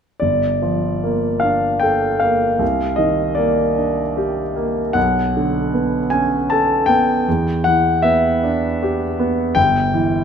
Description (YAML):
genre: classical, impressionist solo piano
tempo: 77 BPM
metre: 3/4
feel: rubato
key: unclear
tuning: A4 = 439 Hz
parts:
  - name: clear concert grand piano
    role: solo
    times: 0.2-10.2 s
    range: G1 to A5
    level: -15 LUFS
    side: equal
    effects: none
room: moderate recital hall reverb, RT60 1.4 s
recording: close, detailed microphones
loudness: -15 LUFS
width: side -7 dB against mid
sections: 0.2-10.2 A section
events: none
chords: 0.2 Gm9; 2.6 Cm9; 5.0 Bm9; 7.3 Em7; 9.6 G5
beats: | 0.24 1.04 1.82 | 2.61 3.39 4.17 | 4.96 5.74 6.50 | 7.26 8.03 8.80 | 9.56